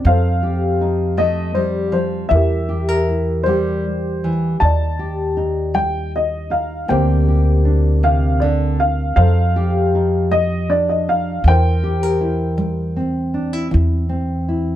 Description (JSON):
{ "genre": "acoustic folk-pop ballad", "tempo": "53 BPM (dotted quarters)", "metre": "6/8", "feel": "straight", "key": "unclear", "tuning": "A4 = 440 Hz", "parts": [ { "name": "nylon-string guitar", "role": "accompaniment", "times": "0.0-14.8 s", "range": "C3 to Bb4", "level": "-22 LUFS", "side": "left 1 dB", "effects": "none" }, { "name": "upright bass", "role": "bass", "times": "0.0-14.8 s", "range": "D2 to F2", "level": "-18 LUFS", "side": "equal", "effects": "none" }, { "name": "dark upright piano", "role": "melody", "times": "0.1-13.0 s", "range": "G4 to A5", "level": "-20 LUFS", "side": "left 1 dB", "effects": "none" } ], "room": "light reverb", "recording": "none", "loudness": "-15 LUFS", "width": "side -12 dB against mid", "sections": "0.0-13.7 A section; 13.7-14.8 B section", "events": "none", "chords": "0.0 F9; 2.3 C7/E; 4.6 Ebmaj7; 6.9 Bb69/D; 9.2 F13; 11.4 C7/E; 13.7 C/E" }